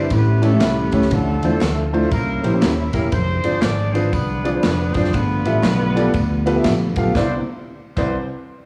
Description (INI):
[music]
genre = uptempo gospel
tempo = 119 BPM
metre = 4/4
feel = swing 62% on 8ths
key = C major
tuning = A4 = 439 Hz
[part]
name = warm horn section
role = melody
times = 0.0-8.1 s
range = A3 to D5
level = -29 LUFS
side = equal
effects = none
[part]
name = warm grand piano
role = accompaniment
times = 0.0-8.1 s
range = C2 to F5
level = -24 LUFS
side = equal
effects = none
[part]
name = mellow tonewheel organ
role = sustained chords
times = 0.0-7.4 s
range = D3 to E5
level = -28 LUFS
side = equal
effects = none
[part]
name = fingered electric bass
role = bass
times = 0.0-8.1 s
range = Eb1 to E2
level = -23 LUFS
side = equal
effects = none
[part]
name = modern studio drum kit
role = drums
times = 0.1-8.1 s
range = crash cymbal, kick drum, ride cymbal, snare drum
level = -26 LUFS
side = equal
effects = none
[part]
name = tambourine and handclaps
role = percussion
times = 0.1-8.1 s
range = none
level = -40 LUFS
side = equal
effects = none
[sound]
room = moderate concert hall reverb, RT60 2.0 s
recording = worn, warbling old tape, cassette tape, warbly pitch drift, studio reverb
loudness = -19 LUFS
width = mono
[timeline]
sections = 0.0-7.2 A section; 7.2-8.7 B section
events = none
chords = 0.1 A7; 1.1 Dm9; 2.1 C7b9; 3.1 Fm6; 5.1 G13; 7.2 Cmaj9